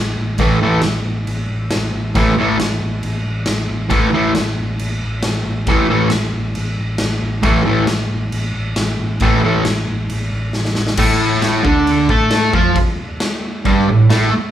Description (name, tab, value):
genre	garage rock duo or trio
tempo	136 BPM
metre	4/4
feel	straight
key	unclear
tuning	A4 = 439 Hz
part	hollow-body short-scale picked electric bass	bass	0.0-14.4 s	G1 to A2	-22 LUFS	equal	none
part	fuzz guitar	riff	0.4-14.3 s	G2 to A4	-14 LUFS	right 1 dB	distortion
part	raw garage drum kit	drums	0.4-14.2 s	crash cymbal, kick drum, snare drum	-20 LUFS	equal	none
room	moderate large studio reverb, RT60 0.9 s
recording	band playing live in one room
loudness	-14 LUFS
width	side -11 dB against mid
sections	0.0-11.0 A section; 11.0-14.5 B section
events	drum fill 10.6-11.0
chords	0.0 A5; 11.0 Gsus2